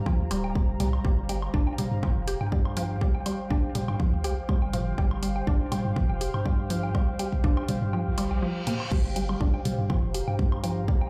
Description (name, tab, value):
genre	minimal techno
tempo	122 BPM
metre	4/4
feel	swing 54% on 16ths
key	G minor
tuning	A4 = 441 Hz
part	punchy sub bass	bass	0.0-10.8 s	D1 to G2	-32 LUFS	equal	sidechain pumping
part	warbly tape-like pad	texture	0.0-11.1 s	G4 to Bb5	-39 LUFS	equal	chorus, built-in reverb, sidechain pumping
part	resonant blip pluck	riff	0.1-10.9 s	F3 to G4	-34 LUFS	equal	chorus, cassette tape, sidechain pumping, delay
part	electronic kick drum	drums	0.1-11.0 s	none	-28 LUFS	equal	none
part	electronic woodblock and toms	percussion	0.1-11.1 s	none	-38 LUFS	equal	dub echo
part	house drum kit	drums	0.3-10.7 s	crash cymbal, hi-hat	-41 LUFS	equal	none
part	reverse cymbal	sound effects	8.2-8.9 s	none	-42 LUFS	equal	none
room	light reverb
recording	played on a big sound system in a bare room, large studio reverb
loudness	-27 LUFS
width	mono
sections	0.0-11.1 A section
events	kick drops out 7.9-8.9; reverse cymbal 8.2-8.9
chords	0.0 Gm7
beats	0.06 0.56 | 1.05 1.54 2.03 2.52 | 3.01 3.51 4.00 4.49 | 4.98 5.47 5.96 6.46 | 6.95 7.44 7.93 8.42 | 8.92 9.41 9.90 10.39 | 10.88